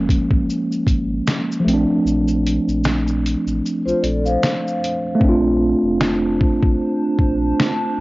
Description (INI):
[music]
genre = lo-fi hip hop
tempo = 76 BPM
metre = 4/4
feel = swing 57% on 16ths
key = Bb major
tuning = A4 = 440 Hz
[part]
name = mellow tine electric piano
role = accompaniment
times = 0.0-8.0 s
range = F3 to F4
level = -18 LUFS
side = right 1 dB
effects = medium stereo tremolo, low-pass filter
[part]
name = sub bass with octave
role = bass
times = 0.0-8.0 s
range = F1 to Bb1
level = -24 LUFS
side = equal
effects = none
[part]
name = lo-fi sampler-style drum kit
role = drums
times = 0.1-7.8 s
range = finger snaps, hi-hat, kick drum, shaker, snare drum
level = -20 LUFS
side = equal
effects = cassette tape
[part]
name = vibraphone with soft mallets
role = second line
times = 3.9-5.2 s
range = F4 to F5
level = -22 LUFS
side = left 1 dB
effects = low-pass filter, tape echo
[part]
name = warbly tape-like pad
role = sustained chords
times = 5.8-8.0 s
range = D4 to A5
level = -24 LUFS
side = right 2 dB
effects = chorus, built-in reverb, low-pass filter
[sound]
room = little or no reverb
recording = home recording on cassette, nothing above 7.5 kHz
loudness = -16 LUFS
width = side -20 dB against mid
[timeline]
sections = 0.0-5.2 A section; 5.2-8.0 B section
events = kick muted 2.1-5.2; hi-hats muted 5.2-8.0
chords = 0.0 Gbmaj9 (rootless); 1.7 Bbmaj9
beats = 0.47 1.26 | 2.05 2.84 3.63 4.42 | 5.21 6.00 6.79 7.58